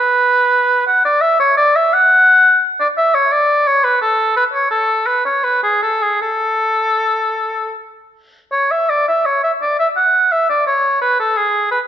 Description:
classical, baroque-style fantasia for unaccompanied oboe; 77-87 BPM; 3/4; rubato; A major; A4 = 440 Hz
warm oboe; solo; 0.0-11.8 s; G#4 to F#5; -12 LUFS; equal
moderate recital hall reverb, RT60 1.4 s; nothing above 7.7 kHz; -12 LUFS; side -10 dB against mid
0.0-8.5 A section; 8.5-11.9 B section

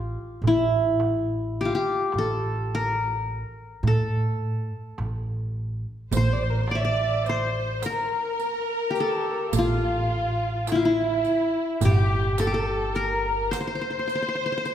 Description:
Turkish makam ensemble; 106 BPM (eighths); 10/8; straight; A makam kurdi; A4 = 441 Hz
qanun; melody; 0.0-14.7 s; E4 to E5; -25 LUFS; left 1 dB
upright bass; bass; 0.0-13.5 s; G1 to A2; -28 LUFS; right 1 dB
darbuka; percussion; 0.4-13.8 s; -28 LUFS; right 2 dB
dark kamancheh; second line; 6.1-14.7 s; E4 to D5; -32 LUFS; left 1 dB
warm studio violin section; second line; 6.1-14.7 s; E4 to D5; -30 LUFS; left 1 dB
riq; percussion; 6.1-14.7 s; -35 LUFS; right 6 dB
wet recital hall reverb, RT60 1.7 s; recorded in a church or concert hall, faint mains hum; -22 LUFS; side -10 dB against mid
0.0-6.1 A section; 6.1-14.7 B section

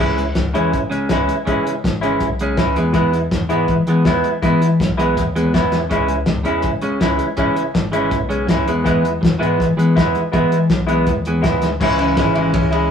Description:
indie rock; 163 BPM; 4/4; straight; C# minor; A4 = 440 Hz
overdriven electric guitar; riff; 0.0-12.9 s; C#3 to C#4; -21 LUFS; right 1 dB
raw garage guitar; riff; 0.0-12.9 s; C#3 to E4; -19 LUFS; right 1 dB; overdrive
growling fingered electric bass; bass; 0.0-12.9 s; G#1 to E3; -22 LUFS; left 2 dB; overdrive
cloth-damped thuddy drum kit; drums; 0.2-12.8 s; crash cymbal, hi-hat, kick drum, ride cymbal, snare drum; -20 LUFS; left 1 dB
moderate stone room reverb, RT60 1.0 s; rough rehearsal-room recording; -15 LUFS; side -7 dB against mid
0.0-11.8 A section; 11.8-12.9 B section
0.0 C#m7; 2.8 E; 5.9 C#m7; 8.7 E; 11.8 C#m

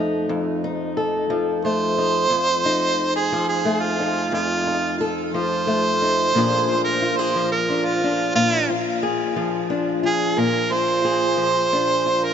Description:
acoustic country blues, solo or duo; 60 BPM (dotted quarters); 12/8; straight; F mixolydian; A4 = 438 Hz
fingerpicked old ladder-braced acoustic guitar; accompaniment; 0.0-12.3 s; F2 to A4; -22 LUFS; left 2 dB
clear harmonica; melody; 1.7-12.3 s; F4 to C5; -20 LUFS; right 2 dB
wet huge ambient reverb, RT60 6.8 s; dreamy mix soaked in reverb, nothing above 7.8 kHz; -18 LUFS; side -8 dB against mid
0.0-12.3 A section
0.0 F7; 6.3 Bb7

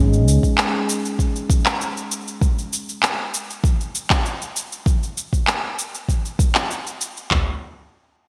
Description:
organic downtempo; 98 BPM; 4/4; straight
electronic shaker and handclaps; drums; 0.1-7.3 s; -25 LUFS; equal; gated reverb
organic electronic drum kit; drums; 0.4-7.5 s; handclaps, kick drum, toms; -21 LUFS; equal; gated reverb
moderate lush hall reverb, RT60 2.6 s; bright 1980s-style digital production; -21 LUFS; mono
0.0-7.3 A section

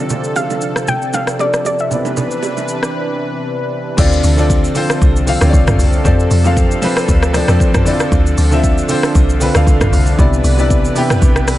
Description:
amapiano; 116 BPM; 4/4; swing 55% on 16ths; D dorian; A4 = 439 Hz
warm concert grand piano; accompaniment; 0.0-11.6 s; C3 to F5; -18 LUFS; left 1 dB; low-pass filter
lush unison pad; sustained chords; 0.0-11.6 s; C3 to B4; -21 LUFS; equal; chorus, sidechain pumping, low-pass filter
deep house drum kit; drums; 0.1-11.6 s; crash cymbal, hi-hat, kick drum, rim click, shaker, toms; -15 LUFS; equal
bongos and congas; percussion; 0.1-2.7 s; -23 LUFS; right 5 dB
soft round pluck; melody; 0.4-2.8 s; D5 to G5; -19 LUFS; equal; chorus, low-pass filter, digital delay
deep log drum bass; bass; 4.0-11.6 s; B1 to F2; -14 LUFS; equal
digital ambience; nothing above 11.0 kHz; -11 LUFS; side -15 dB against mid
0.0-4.0 A section; 4.0-11.6 B section
break 2.9-4.0; drop 4.0-11.6
0.0 Dm7; 1.9 Cmaj9; 4.0 Dm7; 6.0 F6; 7.9 Dm7; 10.2 Cmaj9

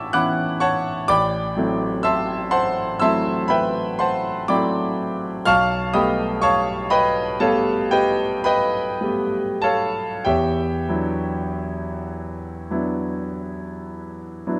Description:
classical, impressionist solo piano; 31-43 BPM (dotted quarters); 9/8; rubato; E dorian; A4 = 440 Hz
clear concert grand piano; solo; 0.0-14.6 s; A1 to F#6; -22 LUFS; equal
light reverb; close, detailed microphones; -21 LUFS; mono
0.0-14.6 A section
0.0 A69; 1.1 D9/A; 5.5 Baug7; 10.2 Em9

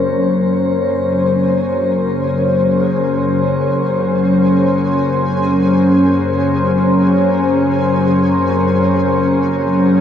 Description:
dark ambient drone; free time; A4 = 440 Hz
deep dark ambient pad; sustained chords; 0.0-10.0 s; C#4 to B#4; -15 LUFS; equal; chorus, built-in reverb, shimmer reverb
dark detuned synth bell; arpeggios; 0.0-10.0 s; C#4 to G#4; -39 LUFS; equal
organ-like drone; drone; 0.0-10.0 s; F#2 to C#3; -15 LUFS; left 2 dB; ensemble chorus, built-in reverb
flickering grainy texture; texture; 0.0-10.0 s; G#4; -32 LUFS; left 1 dB; built-in reverb, shimmer reverb
wet cathedral reverb, RT60 6.1 s; small room ambience; -12 LUFS; side -9 dB against mid
0.0-10.0 A section
fade-in on synth texture 0.0-10.0; filter sweep on synth drone 0.0-10.0
0.0 A#m

